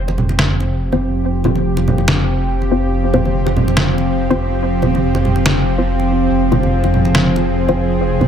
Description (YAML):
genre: deep dubstep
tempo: 142 BPM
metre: 4/4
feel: swing 53% on 16ths, half-time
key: F minor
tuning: A4 = 441 Hz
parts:
  - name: bowed-like drone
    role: sustained chords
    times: 0.0-8.3 s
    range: F3 to Ab4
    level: -18 LUFS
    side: equal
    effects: built-in reverb
  - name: filtered dub chord stab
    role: stabs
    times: 0.0-8.3 s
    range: C4 to C5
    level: -21 LUFS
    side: left 3 dB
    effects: phaser, dub echo
  - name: dark detuned saw bass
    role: bass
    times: 0.0-8.3 s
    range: F1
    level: -18 LUFS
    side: equal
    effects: none
  - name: congas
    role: percussion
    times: 0.1-8.3 s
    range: none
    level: -21 LUFS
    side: right 2 dB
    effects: dub echo
  - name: electronic snare drum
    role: drums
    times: 0.4-7.2 s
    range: none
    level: -16 LUFS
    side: equal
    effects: none
room: moderate spring reverb, RT60 1.9 s, digital ambience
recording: none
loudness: -13 LUFS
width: side -8 dB against mid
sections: 0.0-8.3 A section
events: none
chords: 0.0 F5